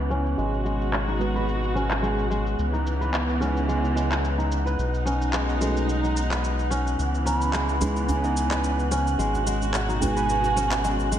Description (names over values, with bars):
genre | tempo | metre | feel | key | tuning
organic downtempo | 109 BPM | 4/4 | swing 55% on 16ths | C# minor | A4 = 440 Hz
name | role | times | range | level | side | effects
rich studio string section | sustained chords | 0.0-11.2 s | B2 to F#4 | -30 LUFS | equal | none
kora | arpeggios | 0.0-11.2 s | G#3 to B4 | -29 LUFS | equal | low-pass filter, digital delay
round analog bass | bass | 0.0-11.2 s | G#1 to C#2 | -26 LUFS | equal | none
wind-like tuned noise texture | texture | 0.0-11.2 s | F#5 | -35 LUFS | right 1 dB | built-in reverb
electronic cabasa and handclaps | drums | 0.1-11.2 s | none | -31 LUFS | equal | low-pass filter on perc, low-pass filter on hats, low-pass filter on snare, low-pass filter on room
felt-muted upright piano | accompaniment | 1.2-10.2 s | G#3 to B4 | -33 LUFS | right 2 dB | digital delay
breathy reedy bass bansuri | melody | 7.3-11.1 s | F#5 to B5 | -28 LUFS | right 4 dB | ping-pong delay
djembe | percussion | 7.3-11.2 s | none | -33 LUFS | right 2 dB | none
room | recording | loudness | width
moderate lush hall reverb, RT60 2.2 s | none | -22 LUFS | side -10 dB against mid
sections
0.0-11.2 A section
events
filter sweep on drum 0.0-11.2; filter sweep on kora 0.0-11.2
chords
0.4 G#m7; 2.6 C#m7; 4.8 B; 7.0 C#m7; 9.2 G#m7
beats
| 0.38 0.93 1.48 2.03 | 2.58 3.13 3.68 4.23 | 4.78 5.33 5.88 6.43 | 6.99 7.54 8.09 8.64 | 9.19 9.74 10.29 10.84